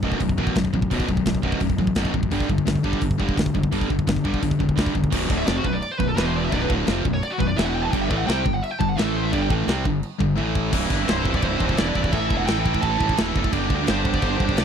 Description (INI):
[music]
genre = heavy metal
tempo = 171 BPM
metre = 4/4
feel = straight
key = B phrygian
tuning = A4 = 439 Hz
[part]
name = distorted electric guitar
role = riff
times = 0.0-14.6 s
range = B1 to C4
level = -26 LUFS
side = right 12 dB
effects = overdrive
[part]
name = high-gain distorted guitar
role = riff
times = 0.0-14.6 s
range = B1 to A4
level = -26 LUFS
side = left 11 dB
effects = distortion
[part]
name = fuzz fingered electric bass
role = bass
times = 0.0-14.6 s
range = B0 to D2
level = -27 LUFS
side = equal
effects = overdrive
[part]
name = tight metal drum kit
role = drums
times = 0.0-14.6 s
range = china cymbal, crash cymbal, hi-hat, kick drum, snare drum, toms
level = -25 LUFS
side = equal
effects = none
[part]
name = high-gain lead guitar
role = melody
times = 5.4-14.6 s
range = F#4 to A5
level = -27 LUFS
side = right 1 dB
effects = distortion, slapback echo
[sound]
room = studio reverb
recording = dry, close 1970s-style studio recording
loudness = -20 LUFS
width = side -7 dB against mid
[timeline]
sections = 0.0-5.1 A section; 5.1-10.7 B section; 10.7-14.6 C section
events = lead electric guitar solo 5.1-10.7; drum fill 10.4-10.7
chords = 0.0 B5; 2.3 G5; 5.1 Bm; 6.2 E5; 6.5 Bm; 7.6 E5; 7.9 G5; 9.0 A5; 9.3 G5; 10.4 A5; 10.7 C; 12.1 A5; 13.5 G5